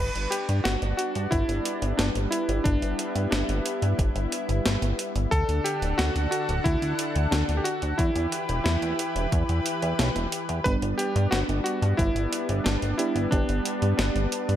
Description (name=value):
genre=synthwave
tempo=90 BPM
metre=4/4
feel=straight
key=G major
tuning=A4 = 443 Hz
part: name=warm electric grand piano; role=melody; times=0.0-14.6 s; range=D4 to B4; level=-30 LUFS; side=left 1 dB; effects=ping-pong delay
part: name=lush unison pad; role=sustained chords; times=0.0-14.6 s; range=D3 to F#5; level=-31 LUFS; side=equal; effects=chorus, sidechain pumping
part: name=chorused synth bass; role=bass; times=0.0-14.6 s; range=D1 to G2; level=-26 LUFS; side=equal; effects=none
part: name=clean 12-bit digital drum machine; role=drums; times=0.2-14.6 s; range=hi-hat, snare drum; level=-30 LUFS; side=equal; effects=overdrive, gated reverb
part: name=electronic kick drum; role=drums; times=1.3-13.5 s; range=none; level=-26 LUFS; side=equal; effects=overdrive
part: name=mellow FM electric piano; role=stabs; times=10.7-14.6 s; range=G3 to G4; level=-32 LUFS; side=right 4 dB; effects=chorus, tape echo
room=light reverb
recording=none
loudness=-23 LUFS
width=side -11 dB against mid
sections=0.0-14.6 A section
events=none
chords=0.0 G; 5.3 D; 8.0 Em; 10.7 G